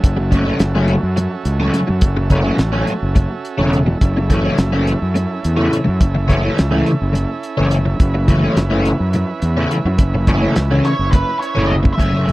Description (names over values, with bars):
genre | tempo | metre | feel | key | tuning
psychedelic rock | 211 BPM (eighths) | 7/8 | straight | unclear | A4 = 439 Hz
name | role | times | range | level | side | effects
overdriven combo organ | sustained chords | 0.0-11.9 s | C#4 to E5 | -27 LUFS | right 5 dB | none
fuzz fingered electric bass | bass | 0.0-12.3 s | E1 to F#2 | -18 LUFS | equal | overdrive
cloth-damped thuddy drum kit | drums | 0.0-12.3 s | hi-hat, kick drum, snare drum, toms | -15 LUFS | equal | none
overdriven semi-hollow guitar | riff | 0.2-12.3 s | F#2 to C#4 | -17 LUFS | left 1 dB | rotary speaker
octave-fuzz lead guitar | melody | 10.9-12.3 s | B4 to E5 | -21 LUFS | right 2 dB | distortion, tape echo
room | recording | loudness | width
little or no reverb | dry, close 1970s-style studio recording | -14 LUFS | side -18 dB against mid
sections
0.0-12.0 A section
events
drum fill 11.6-12.0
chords
0.0 F#m7; 4.0 A/F#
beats
| 0.04 0.33 0.61 0.89 1.18 1.46 1.75 | 2.03 2.31 2.60 2.88 3.17 3.45 3.73 | 4.02 4.30 4.59 4.87 5.16 5.44 5.72 | 6.01 6.29 6.58 6.86 7.15 7.43 7.71 | 8.00 8.28 8.57 8.85 9.14 9.42 9.71 | 9.99 10.28 10.56 10.85 11.13 11.41 11.70 | 11.99 12.27